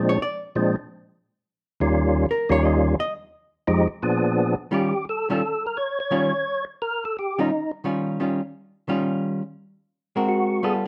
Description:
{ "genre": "jazz", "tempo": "173 BPM", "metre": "4/4", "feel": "swing 64% on 8ths", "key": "Eb mixolydian", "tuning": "A4 = 440 Hz", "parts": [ { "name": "percussive tonewheel organ", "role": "melody", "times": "0.0-7.7, 10.3-10.7 s", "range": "Eb2 to Db5", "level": "-24 LUFS", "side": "equal", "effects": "slow rotary speaker, overdrive, chorus vibrato" }, { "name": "archtop guitar, miked and amplified", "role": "accompaniment", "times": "0.0-10.8 s", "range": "Eb3 to Eb5", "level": "-26 LUFS", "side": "equal", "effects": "none" } ], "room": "moderate studio reverb, RT60 0.7 s", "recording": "dark, warm production", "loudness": "-24 LUFS", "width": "mono", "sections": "0.0-4.7 A section; 4.7-10.9 B section", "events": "hollow-body jazz guitar solo 0.0-4.7", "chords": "0.0 Bb9; 1.9 Eb9; 3.3 Fm7; 4.0 Bb7b9; 4.7 Eb9; 10.3 Ab9" }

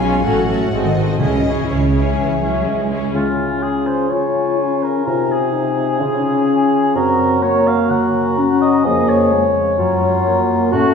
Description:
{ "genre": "classical", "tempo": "126 BPM", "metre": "4/4", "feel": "straight", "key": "C# minor, Db major from 3.1 s", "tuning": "A4 = 440 Hz", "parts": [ { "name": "warm symphonic violin section", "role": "melody", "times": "0.0-2.7 s", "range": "C#5 to G#5", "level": "-26 LUFS", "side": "left 4 dB", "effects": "none" }, { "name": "dark symphonic violin section", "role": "second line", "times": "0.0-3.1 s", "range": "E4 to A4", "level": "-24 LUFS", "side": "equal", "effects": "none" }, { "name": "warm symphonic viola section", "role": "accompaniment", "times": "0.0-3.1 s", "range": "F#3 to C#4", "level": "-23 LUFS", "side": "equal", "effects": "none" }, { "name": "concert harp", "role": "arpeggios", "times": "0.0-10.9 s", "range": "F2 to G#5", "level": "-24 LUFS", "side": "left 4 dB", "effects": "none" }, { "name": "dark symphonic cello section", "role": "bass", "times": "0.0-3.1 s", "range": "G#2 to G#3", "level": "-23 LUFS", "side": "right 3 dB", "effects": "none" }, { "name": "warm symphonic double bass section", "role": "bass", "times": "0.0-3.1 s", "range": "G#1 to C#2", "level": "-23 LUFS", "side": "right 3 dB", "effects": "none" }, { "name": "timpani", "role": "percussion", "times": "1.2-1.9 s", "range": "C#3", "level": "-25 LUFS", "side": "right 1 dB", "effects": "none" }, { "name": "mellow hollow concert flute", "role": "second line", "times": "3.1-10.9 s", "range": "Ab5 to Bb5", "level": "-24 LUFS", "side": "left 4 dB", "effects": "none" }, { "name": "mellow oboe", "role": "second line", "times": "3.1-10.9 s", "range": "F4 to Gb5", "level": "-19 LUFS", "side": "equal", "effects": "none" }, { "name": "warm clarinet", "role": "second line", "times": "3.1-10.9 s", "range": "Eb4 to Ab4", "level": "-24 LUFS", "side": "equal", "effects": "none" }, { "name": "mellow bassoon", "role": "accompaniment", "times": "3.1-10.9 s", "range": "C3 to A3", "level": "-21 LUFS", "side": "right 1 dB", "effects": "none" }, { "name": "mellow French horn section", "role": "sustained chords", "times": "3.1-10.9 s", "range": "Gb3 to F4", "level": "-18 LUFS", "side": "left 2 dB", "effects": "none" } ], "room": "wet recital hall reverb, RT60 1.7 s", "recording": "heard from further back in the room", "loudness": "-14 LUFS", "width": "side -6 dB against mid", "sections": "0.0-3.1 A section; 3.1-10.9 B section", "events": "none", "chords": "0.2 F#m/A; 0.7 G#7b9; 1.2 C#m; 3.1 Db; 5.1 Ab/C; 6.0 Db; 7.0 Gb; 8.9 Db/F; 9.8 Gbmaj7" }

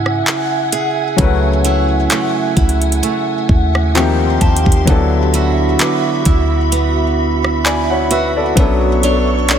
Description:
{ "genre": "contemporary R&B", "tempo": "65 BPM", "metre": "4/4", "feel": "swing 54% on 16ths", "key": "F# minor", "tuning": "A4 = 439 Hz", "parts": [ { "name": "warm baby grand piano", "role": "accompaniment", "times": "0.0-9.6 s", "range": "E#3 to G#5", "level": "-19 LUFS", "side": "left 5 dB", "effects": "none" }, { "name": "glassy FM pad", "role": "sustained chords", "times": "0.0-9.6 s", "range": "F#4 to C#6", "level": "-20 LUFS", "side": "equal", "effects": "ensemble chorus, built-in reverb" }, { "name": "picked steel-string acoustic guitar", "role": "arpeggios", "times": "0.0-9.6 s", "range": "C#3 to C#5", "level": "-19 LUFS", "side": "right 6 dB", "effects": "ping-pong delay" }, { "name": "clean 808-style bass", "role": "bass", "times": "0.0-9.6 s", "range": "B1 to G#2", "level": "-16 LUFS", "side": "equal", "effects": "none" }, { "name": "soft synth bell", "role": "texture", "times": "0.0-9.0 s", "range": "E5 to D6", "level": "-30 LUFS", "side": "left 2 dB", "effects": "none" }, { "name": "smooth R&B drum kit", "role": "drums", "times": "0.1-9.6 s", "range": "handclaps, hi-hat, kick drum, rim click", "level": "-17 LUFS", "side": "equal", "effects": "none" } ], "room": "light reverb", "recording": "none", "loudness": "-12 LUFS", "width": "side -8 dB against mid", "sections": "0.0-9.6 A section", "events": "none", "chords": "0.0 F#m9; 4.0 D#69; 4.9 D69; 8.6 Bm9" }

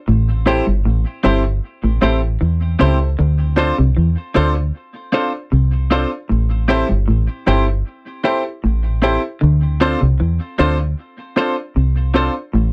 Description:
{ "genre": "reggae", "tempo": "77 BPM", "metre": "4/4", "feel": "straight", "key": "D minor", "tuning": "A4 = 442 Hz", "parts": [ { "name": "semi-hollow electric guitar", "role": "riff", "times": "0.1-12.7 s", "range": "G2 to E3", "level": "-22 LUFS", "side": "equal", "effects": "subtle chorus" }, { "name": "deep dub fingered electric bass", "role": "bass", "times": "0.1-12.7 s", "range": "G1 to E2", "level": "-19 LUFS", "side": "equal", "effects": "none" }, { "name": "semi-hollow electric guitar", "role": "accompaniment", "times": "0.5-12.3 s", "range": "C4 to C5", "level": "-23 LUFS", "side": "equal", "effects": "lush chorus, tape echo" }, { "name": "bright upright piano", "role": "stabs", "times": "0.5-12.3 s", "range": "D4 to C5", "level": "-22 LUFS", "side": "equal", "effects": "none" } ], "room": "light reverb", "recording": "dry, close 1970s-style studio recording", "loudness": "-17 LUFS", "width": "mono", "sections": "0.0-3.2 A section; 3.2-12.7 A section", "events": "none", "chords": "0.1 Am7; 3.2 Dm7; 6.3 Am7; 9.4 Dm7" }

